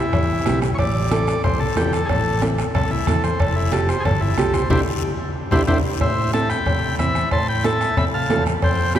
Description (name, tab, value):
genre	latin, cumbia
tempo	184 BPM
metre	4/4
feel	straight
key	A minor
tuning	A4 = 440 Hz
part	combo organ	melody	0.0-9.0 s	E4 to C6	-23 LUFS	left 1 dB	none
part	nylon-string guitar	accompaniment	0.0-9.0 s	C4 to C5	-24 LUFS	right 2 dB	none
part	fingered electric bass	bass	0.1-9.0 s	F1 to C3	-23 LUFS	equal	none
part	bombo	percussion	0.1-9.0 s	none	-25 LUFS	equal	none
part	congas	percussion	0.1-9.0 s	none	-28 LUFS	left 2 dB	none
part	cowbell and timbales	percussion	0.1-9.0 s	none	-30 LUFS	right 2 dB	none
part	guiro	percussion	0.1-9.0 s	none	-37 LUFS	left 6 dB	none
room	wet cathedral reverb, RT60 6.1 s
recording	recorded in a church or concert hall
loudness	-17 LUFS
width	side -10 dB against mid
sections	0.0-6.0 A section; 6.0-9.0 B section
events	transistor combo organ solo 0.0-6.0; drum fill 4.7-6.0; band accent 4.7-6.0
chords	0.0 C; 0.8 Am; 3.4 Fsus2; 4.7 Cadd9; 6.0 Amadd9